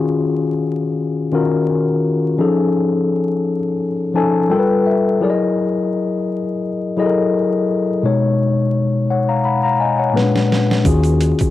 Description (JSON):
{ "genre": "R&B, neo-soul", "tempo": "85 BPM", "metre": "4/4", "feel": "swing 53% on 16ths", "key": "Eb minor", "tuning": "A4 = 439 Hz", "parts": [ { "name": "mellow tine electric piano", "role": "accompaniment", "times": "0.0-11.5 s", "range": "Bb2 to B5", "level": "-15 LUFS", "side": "left 3 dB", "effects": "medium stereo tremolo, cassette tape" }, { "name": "boom bap sampler-style drum kit", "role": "drums", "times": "10.2-11.5 s", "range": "hi-hat, kick drum, snare drum", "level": "-20 LUFS", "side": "right 1 dB", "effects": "none" }, { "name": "deep dub fingered electric bass", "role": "bass", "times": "10.9-11.3 s", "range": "Eb2", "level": "-17 LUFS", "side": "right 1 dB", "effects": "none" }, { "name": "egg shaker", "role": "percussion", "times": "10.9-11.5 s", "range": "none", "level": "-36 LUFS", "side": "right 9 dB", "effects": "none" } ], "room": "light reverb", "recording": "home recording on cassette, vinyl crackle", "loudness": "-15 LUFS", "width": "side -14 dB against mid", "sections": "0.0-11.5 A section", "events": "tine electric piano fill 3.8-5.2; drum fill 10.2-10.9", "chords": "0.0 Ebm11; 2.4 F7alt; 4.5 G9; 5.2 Gb13; 8.0 B69; 10.2 Bb7b9; 10.9 Ebm11" }